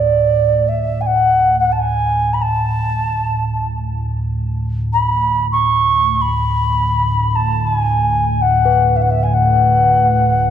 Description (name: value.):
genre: world meditative, free-time meditation music.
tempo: free time.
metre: none.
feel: none.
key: D lydian.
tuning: A4 = 440 Hz.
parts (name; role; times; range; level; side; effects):
mellow alto ocarina; melody; 0.0-10.5 s; D5 to C#6; -15 LUFS; equal; none.
deep rumbling drone; drone; 0.0-10.5 s; D2 to A2; -18 LUFS; right 1 dB; built-in reverb, phaser.
quartz singing bowl; texture; 8.7-10.5 s; B4; -24 LUFS; left 3 dB; none.
room: wet church reverb, RT60 2.5 s.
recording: dark, warm production.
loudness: -13 LUFS.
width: side -9 dB against mid.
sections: 0.0-10.5 A section.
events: none.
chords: none.